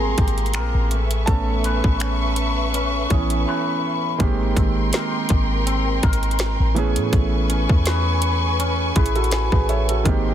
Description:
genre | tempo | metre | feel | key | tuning
contemporary R&B | 82 BPM | 4/4 | swing 54% on 16ths | unclear | A4 = 444 Hz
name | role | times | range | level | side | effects
warm grand piano | accompaniment | 0.0-10.3 s | Eb3 to A5 | -25 LUFS | right 5 dB | none
warm studio string section | sustained chords | 0.0-10.3 s | Bb4 to C#6 | -27 LUFS | left 2 dB | none
electric guitar with an envelope filter | arpeggios | 0.0-10.3 s | Ab3 to B4 | -27 LUFS | left 2 dB | digital delay
clean 808-style bass | bass | 0.0-10.3 s | Ab1 to A2 | -22 LUFS | equal | none
trap drum kit | drums | 0.2-10.2 s | finger snaps, hi-hat, kick drum, snare drum | -21 LUFS | equal | soft clipping on snare
room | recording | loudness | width
little or no reverb | dense, heavily limited modern master | -18 LUFS | side -10 dB against mid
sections
0.0-4.2 A section; 4.2-10.3 B section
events
grand piano solo 0.0-4.2; grand piano fill 9.0-10.1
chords
0.0 Abmaj9; 0.9 Amaj9; 4.2 Abmaj9; 6.8 Amaj9

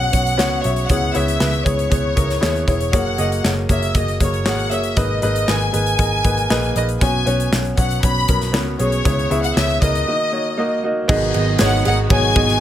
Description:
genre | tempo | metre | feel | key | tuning
piano-driven pop | 118 BPM | 4/4 | straight | G# minor | A4 = 440 Hz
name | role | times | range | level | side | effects
clear studio violin section | melody | 0.0-12.6 s | C#5 to B5 | -22 LUFS | left 1 dB | none
warm concert grand piano | accompaniment | 0.0-12.6 s | G#2 to E5 | -21 LUFS | equal | none
vintage muted picked electric bass | bass | 0.0-12.6 s | E1 to D#2 | -21 LUFS | equal | none
modern studio drum kit | drums | 0.1-12.6 s | crash cymbal, handclaps, hi-hat, kick drum, ride cymbal, snare drum | -21 LUFS | equal | none
warm studio string section | sustained chords | 11.1-12.6 s | D#3 to F#4 | -29 LUFS | equal | none
picked steel-string acoustic guitar | riff | 11.1-12.6 s | G#2 to G#4 | -25 LUFS | right 7 dB | none
room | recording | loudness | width
light reverb, studio reverb | none | -15 LUFS | side -11 dB against mid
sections
0.0-11.1 A section; 11.1-12.6 B section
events
break 10.1-11.1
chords
0.0 Bsus2; 0.9 C#m7; 2.9 F#add9; 5.0 G#madd9; 7.0 Bsus2; 9.1 C#m7; 10.1 D#m; 11.1 G#m7

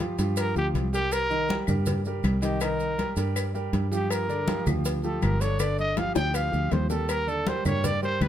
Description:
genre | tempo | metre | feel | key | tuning
Afro-Cuban jazz | 161 BPM | 4/4 | straight | G minor | A4 = 441 Hz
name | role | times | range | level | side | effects
warm concert grand piano | accompaniment | 0.0-8.3 s | D3 to Eb5 | -31 LUFS | right 1 dB | none
fingered electric bass | bass | 0.0-8.3 s | G1 to G2 | -28 LUFS | equal | none
congas | percussion | 0.0-8.3 s | none | -33 LUFS | left 1 dB | none
cowbell and bongos | percussion | 0.0-8.3 s | none | -34 LUFS | left 5 dB | none
maracas | percussion | 0.2-8.3 s | none | -40 LUFS | right 6 dB | none
breathy trumpet | melody | 0.4-8.3 s | G4 to G5 | -29 LUFS | equal | none
claves | percussion | 0.4-8.3 s | none | -39 LUFS | left 10 dB | none
room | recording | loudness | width
light reverb | close, detailed microphones | -24 LUFS | side -10 dB against mid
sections
0.0-8.3 A section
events
trumpet solo 0.0-8.3; drum fill 6.0-7.1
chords
0.0 Gm7; 1.1 Cm7; 4.1 Gm7; 7.1 Ebmaj7

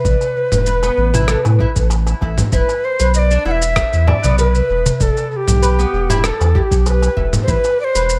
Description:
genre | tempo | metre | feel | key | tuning
organic downtempo | 97 BPM | 4/4 | straight | E minor | A4 = 440 Hz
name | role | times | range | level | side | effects
breathy Native American-style cedar flute | melody | 0.0-8.1 s | G4 to F#5 | -21 LUFS | equal | analog delay
darbuka | percussion | 0.0-7.8 s | none | -27 LUFS | equal | analog delay
warm sub bass | bass | 0.1-8.2 s | E1 to A2 | -18 LUFS | equal | none
dusty soul sampler-style drum kit | drums | 0.1-8.2 s | rim click, shaker, toms | -24 LUFS | equal | none
electronic kick drum | drums | 0.1-7.6 s | none | -21 LUFS | equal | none
oud | arpeggios | 0.7-8.2 s | B3 to E5 | -26 LUFS | equal | tape echo
room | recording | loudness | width
light reverb, digital ambience | echo-heavy mix | -15 LUFS | mono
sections
0.0-8.2 A section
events
none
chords
0.0 Asus2; 2.5 Em; 7.5 Amadd9

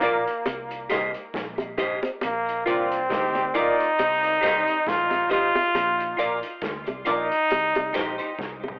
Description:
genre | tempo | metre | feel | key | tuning
roots reggae | 68 BPM | 4/4 | swing 57% on 16ths | unclear | A4 = 440 Hz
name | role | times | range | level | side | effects
brilliant trombone | melody | 0.0-8.3 s | Bb3 to F4 | -26 LUFS | equal | cassette tape, tape echo
semi-hollow electric guitar | accompaniment | 0.0-8.3 s | Eb4 to Eb5 | -32 LUFS | equal | cassette tape, tape echo
filtered dub chord stab | stabs | 0.0-8.1 s | F4 to Eb5 | -31 LUFS | equal | phaser, cassette tape
vintage muted fingered electric bass | bass | 0.0-8.8 s | A1 to D2 | -45 LUFS | equal | none
vintage drum kit | drums | 0.0-8.8 s | hi-hat, kick drum, snare drum, toms | -37 LUFS | equal | none
bongos | percussion | 0.0-8.8 s | none | -33 LUFS | equal | none
warm horn section | second line | 2.7-4.8 s | G3 to D5 | -32 LUFS | equal | cassette tape, tape echo
room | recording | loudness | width
moderate small room reverb, RT60 0.5 s | home recording on cassette, telephone sound | -24 LUFS | mono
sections
0.0-8.8 A section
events
drum fill 8.4-8.8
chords
0.5 Cm; 2.2 Bb; 4.0 Cm; 5.7 Bb; 7.5 Cm

